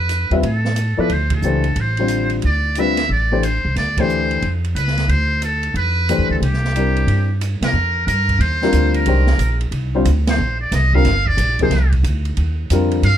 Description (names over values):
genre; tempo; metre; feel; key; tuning
modal jazz; 181 BPM; 4/4; swing 65% on 8ths; D dorian; A4 = 440 Hz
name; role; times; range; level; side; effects
trumpet with metal mute; melody; 0.0-13.2 s; G4 to F5; -21 LUFS; right 1 dB; none
upright bass; bass; 0.0-13.2 s; G1 to C3; -18 LUFS; equal; none
open jazz drum kit; drums; 0.1-13.1 s; hi-hat, kick drum, ride cymbal, snare drum; -27 LUFS; right 3 dB; none
warm baby grand piano; accompaniment; 0.3-13.1 s; C3 to E5; -20 LUFS; left 4 dB; none
room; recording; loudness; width
little or no reverb; dark, warm production; -15 LUFS; side -10 dB against mid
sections
0.0-7.7 A section; 7.7-13.2 B section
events
band accent 1.3, 3.9, 7.6, 10.2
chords
0.0 Dm11; 6.4 C9; 7.7 F13sus4